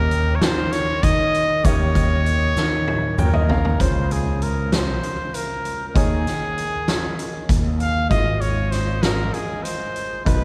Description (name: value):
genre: progressive instrumental, band music in an uneven meter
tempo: 195 BPM (eighths)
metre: 7/8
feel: straight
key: Db lydian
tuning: A4 = 440 Hz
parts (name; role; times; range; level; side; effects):
- clear trumpet; melody; 0.0-10.4 s; Ab4 to F5; -26 LUFS; equal; none
- clear baby grand piano; accompaniment; 0.0-10.4 s; Cb3 to G5; -32 LUFS; equal; none
- fretless electric bass; bass; 0.0-10.4 s; Ab1 to Eb3; -25 LUFS; equal; none
- oversized low-tuned drum kit; drums; 0.1-10.4 s; hi-hat, kick drum, snare drum, toms; -25 LUFS; equal; none
- egg shaker; percussion; 0.4-3.5 s; none; -48 LUFS; equal; none
room: wet cathedral reverb, RT60 5.2 s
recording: recorded in a church or concert hall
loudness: -21 LUFS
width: mono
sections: 0.0-3.8 A section; 3.8-10.4 B section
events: drum fill 2.6-3.8; grand piano fill 2.9-3.8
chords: 0.0 Eb7; 3.8 Dbmaj7; 6.0 Eb7sus4; 8.1 Ab6